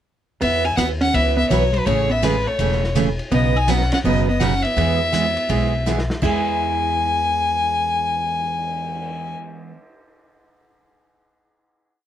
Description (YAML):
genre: country, western swing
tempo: 165 BPM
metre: 4/4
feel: swing 64% on 8ths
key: E major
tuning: A4 = 440 Hz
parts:
  - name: warm fiddle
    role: melody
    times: 0.4-9.3 s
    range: B4 to G#5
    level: -21 LUFS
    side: left 2 dB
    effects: none
  - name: hollow-body jazz guitar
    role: second line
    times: 0.4-9.3 s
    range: F#3 to E4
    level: -25 LUFS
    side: right 2 dB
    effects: none
  - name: picked steel-string acoustic guitar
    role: accompaniment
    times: 0.4-9.7 s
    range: B2 to B4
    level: -24 LUFS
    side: right 6 dB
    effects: none
  - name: upright bass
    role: bass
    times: 0.4-9.3 s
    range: E1 to E2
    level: -24 LUFS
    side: left 1 dB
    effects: none
  - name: vintage drum kit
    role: drums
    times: 0.4-9.1 s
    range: crash cymbal, cymbal swell, hi-hat, kick drum, ride cymbal, snare drum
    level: -30 LUFS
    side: left 1 dB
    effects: none
room: light reverb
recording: none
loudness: -17 LUFS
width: side -10 dB against mid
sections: 0.4-6.2 A section; 6.2-9.1 final chord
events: drum fill 5.9-6.2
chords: 0.4 Esus2; 1.9 Amaj7; 3.3 Badd9; 4.8 E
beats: | 0.42 0.78 1.14 1.50 | 1.87 2.23 2.59 2.96 | 3.32 3.68 4.04 4.41 | 4.77 5.14 5.50 5.86 | 6.23 6.59 6.95 7.32 | 7.68 8.04 8.41 8.77